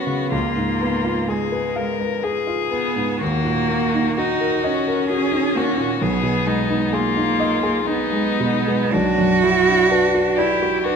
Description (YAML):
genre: classical, slow romantic movement for piano quartet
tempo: 63 BPM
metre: 3/4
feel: uneven beats, rubato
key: unclear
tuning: A4 = 440 Hz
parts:
  - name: rich violin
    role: melody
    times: 0.0-11.0 s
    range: D4 to A#4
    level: -24 LUFS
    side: left 9 dB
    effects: none
  - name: rich cello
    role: second line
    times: 0.0-11.0 s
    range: G#3 to F#4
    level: -21 LUFS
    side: right 4 dB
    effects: none
  - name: warm concert grand piano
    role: accompaniment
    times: 0.0-11.0 s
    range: B1 to F#5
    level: -21 LUFS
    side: equal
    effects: none
room: moderate recital hall reverb, RT60 1.4 s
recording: minimal, uncompressed stereo recording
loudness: -17 LUFS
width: side -6 dB against mid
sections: 0.0-11.0 A section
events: none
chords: 0.3 C#7; 3.2 D#m; 6.0 G#m/B; 8.9 Bm